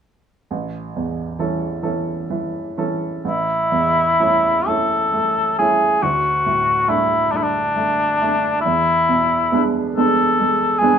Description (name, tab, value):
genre	classical, romantic duo for cor anglais and grand piano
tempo	40-47 BPM (dotted quarters)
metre	6/8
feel	rubato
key	A major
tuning	A4 = 440 Hz
part	clear baby grand piano	accompaniment	0.5-11.0 s	A1 to A4	-21 LUFS	right 4 dB	none
part	mellow cor anglais	melody	3.2-11.0 s	D4 to A4	-16 LUFS	left 2 dB	none
room	light reverb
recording	none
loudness	-16 LUFS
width	side -8 dB against mid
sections	0.5-3.2 A section; 3.2-11.0 B section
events	none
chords	0.5 A; 6.0 D; 8.6 E7